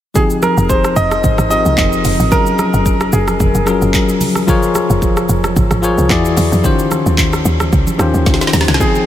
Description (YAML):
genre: amapiano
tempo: 111 BPM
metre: 4/4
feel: swing 55% on 16ths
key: F minor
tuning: A4 = 443 Hz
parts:
  - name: bell-like tine electric piano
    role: accompaniment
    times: 0.1-9.1 s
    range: Eb3 to G5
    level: -16 LUFS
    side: left 3 dB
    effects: none
  - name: clear grand piano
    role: melody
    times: 0.2-3.6, 8.8-9.1 s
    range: Ab4 to Eb5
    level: -19 LUFS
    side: right 1 dB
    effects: ping-pong delay
  - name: deep house drum kit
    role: drums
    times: 0.2-9.1 s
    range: handclaps, hi-hat, kick drum, rim click, shaker, snare drum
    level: -16 LUFS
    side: equal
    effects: none
  - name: congas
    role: percussion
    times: 0.2-8.9 s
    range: none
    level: -25 LUFS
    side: right 3 dB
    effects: none
  - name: tight log drum bass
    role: bass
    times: 0.6-8.8 s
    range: F1 to F2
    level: -16 LUFS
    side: equal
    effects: none
room: moderate huge ambient reverb, RT60 8.9 s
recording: dreamy mix soaked in reverb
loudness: -11 LUFS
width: side -11 dB against mid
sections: 0.2-9.1 A section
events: drop 0.2-9.1; drum fill 8.3-8.8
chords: 0.2 Fm9; 2.3 Gbmaj9; 4.5 Bbm9/F; 6.1 E9; 6.6 Eb13